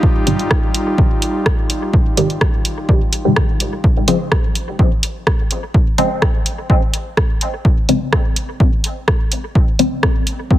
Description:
dub techno; 126 BPM; 4/4; straight; A4 = 440 Hz
airy breathy pad; sustained chords; 0.0-3.8 s; G3 to G4; -22 LUFS; equal; chorus, sidechain pumping
electronic kick drum; drums; 0.0-10.6 s; -15 LUFS; equal
filtered dub chord stab; stabs; 0.3-9.9 s; Ab2 to C4; -20 LUFS; left 1 dB; phaser, sidechain pumping, dub echo
punchy analog drum machine; drums; 0.3-10.4 s; hi-hat, rim click; -20 LUFS; right 1 dB; dub echo
light reverb, digital ambience; heavily compressed radio sound; -14 LUFS; side -14 dB against mid
0.0-3.8 A section; 3.8-10.6 A section
filter sweep on synth stab 0.0-3.8, 3.8-10.6
0.0 Fm9; 3.8 Dbmaj7
| 0.03 0.51 0.98 1.46 | 1.94 2.41 2.89 3.36 | 3.84 4.32 4.79 5.27 | 5.74 6.22 6.70 7.17 | 7.65 8.12 8.60 9.08 | 9.55 10.03 10.51

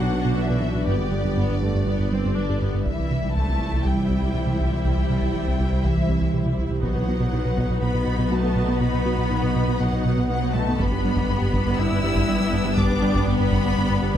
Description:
cinematic, hybrid orchestral and electronic film score; 121 BPM; 4/4; straight; A4 = 440 Hz
warm symphonic violin section; melody; 0.0-14.2 s; D5 to E6; -32 LUFS; left 4 dB
warm symphonic violin section; second line; 0.0-14.2 s; E4 to F#5; -35 LUFS; left 2 dB
rich symphonic viola section; accompaniment; 0.0-14.2 s; G3 to G4; -32 LUFS; equal
ethereal airy pad; sustained chords; 0.0-14.2 s; E3 to D#5; -28 LUFS; left 1 dB; ensemble chorus, built-in reverb
mellow French horn section; sustained chords; 0.0-2.4 s; D3 to F#3; -35 LUFS; left 4 dB
warm trombone section; sustained chords; 0.0-2.6 s; F#3 to D4; -34 LUFS; right 4 dB
harp-like synth pluck; arpeggios; 0.0-14.2 s; C3 to B4; -30 LUFS; left 4 dB; chorus, digital delay
rubbery square bass; riff; 0.0-14.2 s; C2 to B3; -25 LUFS; right 1 dB
mellow tuba; bass; 0.0-2.6 s; G1 to B1; -33 LUFS; right 3 dB
rich symphonic cello section; bass; 0.0-14.2 s; G2 to E4; -29 LUFS; right 1 dB
saturated sub bass; bass; 0.0-14.2 s; G1 to C2; -29 LUFS; equal
warm symphonic double bass section; bass; 0.0-14.2 s; G1 to C2; -31 LUFS; right 3 dB
solo taiko drums; drums; 2.9-3.8, 6.8-7.8, 10.8-14.2 s; -30 LUFS; equal
moderate recital hall reverb, RT60 1.4 s; -20 LUFS; side -10 dB against mid
0.0-2.9 A section; 2.9-14.2 B section
0.0 Bm; 0.9 G; 2.9 C; 6.8 B; 10.8 G
0.38 | 0.88 1.38 1.87 2.37 | 2.86 3.36 3.85 4.35 | 4.85 5.34 5.84 6.33 | 6.83 7.33 7.82 8.32 | 8.81 9.31 9.81 10.30 | 10.80 11.29 11.79 12.29 | 12.78 13.28 13.77

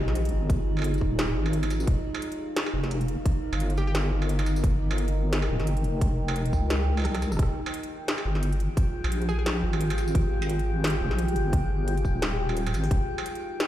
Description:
half-time drum and bass; 174 BPM; 4/4; swing 57% on 16ths, half-time; F minor; A4 = 440 Hz
deep dark ambient pad; sustained chords; 0.0-13.7 s; Eb4 to G5; -34 LUFS; left 1 dB; chorus, built-in reverb, vintage 12-bit sampler grit, sidechain pumping
deep soft wobble bass; bass; 0.0-13.0 s; Eb1 to Db2; -26 LUFS; equal; chorus
metallic inharmonic drone; texture; 0.0-13.7 s; Eb4 to G5; -36 LUFS; right 2 dB; chorus, built-in reverb, phaser
industrial drum kit; drums; 0.1-13.7 s; hi-hat, rim click, snare drum, struck metal, tambourine; -32 LUFS; equal
electronic kick drum; drums; 0.5-13.0 s; -25 LUFS; equal
hollow square pluck; melody; 3.8-3.9, 9.3-9.4 s; G4 to Ab4; -41 LUFS; left 1 dB; chorus, ping-pong delay
digital ambience; played on a big sound system in a bare room, stone room reverb; -24 LUFS; side -13 dB against mid
0.0-13.7 A section
drum fill 7.0-7.4
0.0 Fmadd9; 1.9 Eb; 7.4 Fmadd9; 12.9 Eb
0.15 | 0.50 0.84 1.19 1.53 | 1.88 2.22 2.57 2.91 | 3.26 3.60 3.95 4.29 | 4.64 4.98 5.33 5.67 | 6.01 6.36 6.71 7.05 | 7.39 7.74 8.08 8.43 | 8.77 9.12 9.46 9.81 | 10.15 10.50 10.84 11.19 | 11.53 11.88 12.22 12.57 | 12.91 13.26 13.60

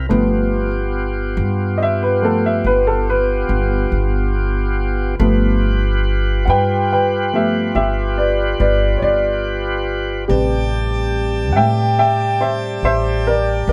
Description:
slow blues; 47 BPM (dotted quarters); 12/8; straight; G mixolydian; A4 = 444 Hz
warm upright piano; accompaniment; 0.0-13.7 s; C3 to G5; -20 LUFS; equal
overdriven tonewheel organ; sustained chords; 0.0-13.7 s; G3 to B4; -25 LUFS; equal; slow rotary speaker
upright bass; bass; 0.0-13.7 s; G1 to A2; -22 LUFS; equal
pipe organ, plenum; sustained chords; 10.3-13.7 s; G5 to A5; -31 LUFS; equal
moderate studio reverb, RT60 0.8 s; -17 LUFS; mono
0.0-13.7 A section
upright piano solo 0.0-13.7
0.1 G7; 10.3 Am7
| 0.10 1.38 2.65 3.92 | 5.20 6.47 7.74 9.02 | 10.29 11.56 12.84

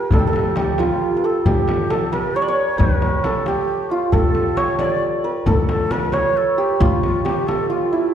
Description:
Persian modal ensemble; 90 BPM (dotted quarters); 6/8; straight; A4 = 440 Hz
santur; melody; 0.0-8.1 s; E4 to D5; -19 LUFS; right 3 dB
breathy reedy ney; second line; 0.0-8.1 s; E4 to D5; -26 LUFS; left 3 dB
tombak; percussion; 0.0-8.1 s; -24 LUFS; left 1 dB
upright bass; bass; 0.1-7.0 s; D2; -23 LUFS; left 1 dB
frame drum; percussion; 0.1-7.6 s; -24 LUFS; left 2 dB
wet scoring stage reverb, RT60 1.4 s; heard from further back in the room; -16 LUFS; side -9 dB against mid
0.0-8.1 A section
| 0.12 0.79 | 1.46 2.12 | 2.79 3.46 | 4.13 4.80 | 5.47 6.14 | 6.81 7.47

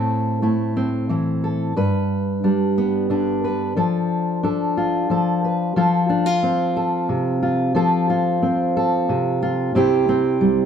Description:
folk; 60 BPM (dotted quarters); 6/8; straight; A4 = 440 Hz
fingerpicked steel-string acoustic guitar; solo; 0.0-10.7 s; G2 to B4; -18 LUFS; equal
moderate studio reverb, RT60 0.7 s; band playing live in one room; -18 LUFS; side -8 dB against mid
0.0-5.8 A section; 5.8-10.7 B section
0.0 Am; 1.8 G; 3.8 Dm/F; 5.8 F; 9.7 C
0.76 | 1.76 2.76 | 3.76 4.76 | 5.76 6.76 | 7.75 8.75 | 9.74

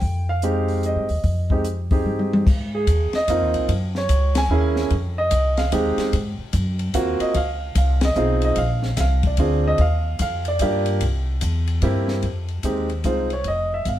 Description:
jazz piano trio; 148 BPM; 3/4; swing 64% on 8ths; F minor; A4 = 440 Hz
clear concert grand piano; melody; 0.0-14.0 s; Ab3 to Ab5; -22 LUFS; right 2 dB; plate reverb
upright bass; bass; 0.0-14.0 s; F1 to Ab2; -22 LUFS; equal
compact cocktail drum kit; drums; 0.0-14.0 s; crash cymbal, hi-hat, kick drum, ride cymbal, snare drum, toms; -25 LUFS; left 1 dB
moderate studio reverb, RT60 0.6 s; heard from further back in the room; -18 LUFS; side -12 dB against mid
0.0-2.5 A section; 2.5-12.2 B section; 12.2-14.0 A section
drum fill 2.1-2.5; band accent 4.3, 8.0
0.0 Fm9; 2.5 Ab69; 3.7 Gb9; 4.9 Fm9; 6.1 Ab13; 7.3 Dbmaj9; 8.6 Bb9; 9.8 Ebmaj9; 11.0 C7; 12.2 Fm7; 13.5 F7(no3)
| 0.02 0.43 0.83 | 1.24 1.65 2.06 | 2.46 2.87 3.28 | 3.69 4.09 4.50 | 4.91 5.31 5.72 | 6.13 6.53 6.94 | 7.35 7.75 8.16 | 8.57 8.97 9.38 | 9.79 10.19 10.60 | 11.01 11.41 11.82 | 12.23 12.64 13.04 | 13.45 13.86

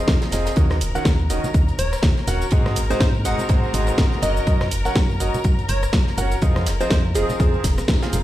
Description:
piano house; 123 BPM; 4/4; swing 57% on 16ths; Eb dorian; A4 = 440 Hz
warm studio string section; sustained chords; 0.0-8.2 s; Bb4 to Bb5; -32 LUFS; left 4 dB; sidechain pumping
bright grand piano; riff; 0.0-8.2 s; Ab2 to Gb5; -26 LUFS; right 1 dB; sidechain pumping, tape echo
solid FM bass; bass; 0.1-8.2 s; Eb1 to Ab2; -23 LUFS; equal; sidechain pumping
electronic kick drum; drums; 0.1-8.0 s; -19 LUFS; equal
house drum kit; drums; 0.1-8.2 s; cabasa, hi-hat, rim click, snare drum; -27 LUFS; equal
tight funk drum kit; drums; 0.1-8.1 s; hi-hat, snare drum; -37 LUFS; right 2 dB
tambourine and congas; percussion; 0.1-8.2 s; -33 LUFS; equal
plucky unison lead; melody; 1.8-7.6 s; Ab4 to Gb5; -28 LUFS; equal; tape echo
small room ambience; played on a big sound system in a bare room, stone room reverb; -17 LUFS; side -14 dB against mid
0.0-8.2 A section
band accent 7.9
0.0 Fm7; 0.6 Ebm7; 2.5 Ab7; 4.2 Ebm7/Gb; 6.4 Fm7
0.08 | 0.57 1.06 1.54 2.03 | 2.52 3.01 3.50 3.98 | 4.47 4.96 5.45 5.93 | 6.42 6.91 7.40 7.89

